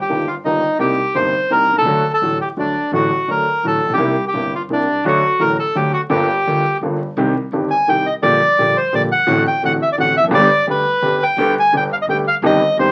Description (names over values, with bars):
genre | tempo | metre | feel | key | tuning
tango | 170 BPM | 3/4 | rubato | G minor | A4 = 440 Hz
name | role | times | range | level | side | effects
bandoneon | melody | 0.0-12.9 s | D4 to Ab5 | -18 LUFS | equal | none
warm concert grand piano | accompaniment | 0.1-12.9 s | G1 to G4 | -21 LUFS | equal | none
upright bass | bass | 0.1-12.9 s | E1 to D2 | -32 LUFS | equal | none
room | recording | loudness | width
moderate small room reverb, RT60 0.5 s | very old 78 rpm record, vinyl crackle | -16 LUFS | mono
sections
0.0-7.2 A section; 7.2-12.9 B section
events
none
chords
0.0 Ebadd9/G; 0.8 Cm7; 1.9 D; 4.0 C7; 5.1 D; 6.1 Gm7; 7.2 Cm; 8.2 Gm/Bb; 9.3 D7/A; 10.3 G